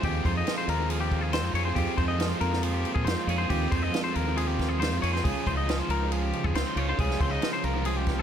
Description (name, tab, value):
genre	math rock and midwest emo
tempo	138 BPM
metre	4/4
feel	straight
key	F minor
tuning	A4 = 440 Hz
part	twangy electric guitar	accompaniment	0.0-8.2 s	F2 to Ab4	-33 LUFS	right 9 dB	analog delay
part	twangy electric guitar	arpeggios	0.0-8.2 s	G4 to Eb5	-32 LUFS	left 8 dB	none
part	overdriven electric guitar	riff	0.0-8.2 s	Db3 to F4	-32 LUFS	right 1 dB	analog delay
part	deep dub fingered electric bass	bass	0.0-8.2 s	C2 to Bb2	-29 LUFS	equal	none
part	compact cocktail drum kit	drums	0.0-8.2 s	kick drum, ride cymbal, snare drum	-31 LUFS	equal	analog delay
room	small room ambience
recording	echo-heavy mix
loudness	-24 LUFS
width	side -9 dB against mid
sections	0.0-8.2 A section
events	none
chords	0.0 Fm11; 5.2 Dbmaj9